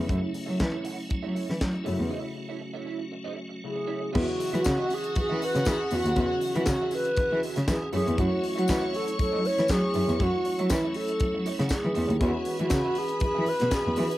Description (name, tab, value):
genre	disco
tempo	119 BPM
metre	4/4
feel	straight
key	E major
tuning	A4 = 437 Hz
part	electric guitar at the edge of break-up	accompaniment	0.0-14.2 s	C#4 to F#5	-38 LUFS	right 10 dB	ensemble chorus, cassette tape
part	mellow clav	accompaniment	0.0-14.2 s	C#3 to F#4	-40 LUFS	left 8 dB	cassette tape
part	tonewheel organ	sustained chords	0.0-14.2 s	E3 to G#4	-36 LUFS	right 1 dB	chorus vibrato, slow rotary speaker, cassette tape
part	dark cello	bass	0.0-14.1 s	D#2 to F#3	-28 LUFS	equal	none
part	tight funk drum kit	drums	0.1-14.2 s	crash cymbal, handclaps, hi-hat, kick drum, snare drum	-31 LUFS	equal	none
part	mellow wooden-headed alto flute	melody	3.7-14.2 s	E4 to C#5	-28 LUFS	equal	cassette tape
part	warm chamber string section	second line	4.1-14.2 s	F#4 to C#6	-35 LUFS	equal	cassette tape
part	tambourine	percussion	4.6-13.8 s	none	-40 LUFS	left 11 dB	none
room	little or no reverb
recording	home recording on cassette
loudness	-24 LUFS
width	side -16 dB against mid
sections	0.0-4.1 A section; 4.1-14.2 B section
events	break 2.1-4.1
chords	0.0 F#m7; 4.1 E69; 7.9 F#m7; 12.2 E69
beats	| 0.10 0.60 1.11 1.62 | 2.12 2.63 3.14 3.64 | 4.15 4.65 5.16 5.66 | 6.17 6.67 7.17 7.68 | 8.18 8.69 9.19 9.69 | 10.20 10.70 11.20 11.71 | 12.21 12.71 13.22 13.72